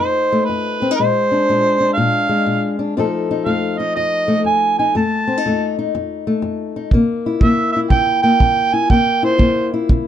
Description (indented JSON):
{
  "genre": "acoustic country blues, solo or duo",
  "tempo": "121 BPM",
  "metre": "4/4",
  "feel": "swing 66% on 8ths",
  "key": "F mixolydian",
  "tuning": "A4 = 440 Hz",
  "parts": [
    { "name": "mellow harmonica", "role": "melody", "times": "0.0-9.7 s", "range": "B4 to A5", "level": "-17 LUFS", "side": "right 3 dB", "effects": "plate reverb" },
    { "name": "fingerpicked old ladder-braced acoustic guitar", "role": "accompaniment", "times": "0.0-10.1 s", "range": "F2 to A4", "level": "-18 LUFS", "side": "left 3 dB", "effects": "none" },
    { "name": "kick drum", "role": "drums", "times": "6.9-10.0 s", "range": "none", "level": "-16 LUFS", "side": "right 1 dB", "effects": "none" }
  ],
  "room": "moderate booth ambience, RT60 0.2 s",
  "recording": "dark, warm production",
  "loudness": "-14 LUFS",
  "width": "side -10 dB against mid",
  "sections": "0.0-10.1 A section",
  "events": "none",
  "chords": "0.0 F7; 1.0 Bb7; 3.0 F7; 6.9 C7"
}